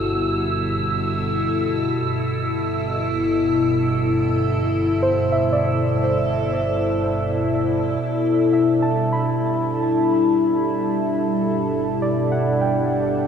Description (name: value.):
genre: ambient.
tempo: 60 BPM.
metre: 3/4.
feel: straight.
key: unclear.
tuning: A4 = 440 Hz.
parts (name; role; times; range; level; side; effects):
evolving wavetable pad; sustained chords; 0.0-13.3 s; B2 to A4; -20 LUFS; left 1 dB; phaser, built-in reverb.
muted felt-like synth keys; arpeggios; 0.0-13.3 s; F#4 to B5; -25 LUFS; right 1 dB; chorus, tape echo.
dark chamber double bass section; bass; 0.0-13.3 s; G1; -29 LUFS; equal; none.
wind-like tuned noise texture; texture; 0.0-8.0 s; E6; -30 LUFS; right 3 dB; built-in reverb, analog chorus.
overtone-sweeping drone; drone; 8.8-13.3 s; G3 to D4; -26 LUFS; right 1 dB; chorus, built-in reverb, phaser.
room: wet huge ambient reverb, RT60 7.9 s.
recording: dreamy mix soaked in reverb.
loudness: -18 LUFS.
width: side -7 dB against mid.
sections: 0.0-8.0 A section; 8.0-13.3 B section.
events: none.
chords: 0.0 G; 2.0 D5/G; 11.0 Gmaj7.